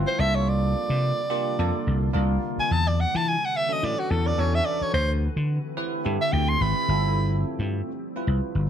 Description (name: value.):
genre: jazz.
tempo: 107 BPM.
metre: 4/4.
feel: swing 54% on 16ths.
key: unclear.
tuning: A4 = 444 Hz.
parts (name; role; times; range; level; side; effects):
bell-like tine electric piano; accompaniment; 0.0-8.7 s; Bb3 to B4; -30 LUFS; right 2 dB; wide subtle chorus.
glassy FM pad; sustained chords; 0.0-8.7 s; C3 to B4; -33 LUFS; left 2 dB; ensemble chorus, built-in reverb.
vintage slap bass; bass; 0.0-8.7 s; G1 to E3; -24 LUFS; equal; none.
breathy soprano saxophone; melody; 0.1-7.4 s; F#4 to C6; -25 LUFS; right 1 dB; slapback echo.
room: light reverb.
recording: none.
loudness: -22 LUFS.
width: side -9 dB against mid.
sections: 0.0-8.7 A section.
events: soprano saxophone solo 0.0-8.7.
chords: 0.2 C13sus4; 2.7 E13sus4; 4.9 D13sus4; 6.9 G13sus4.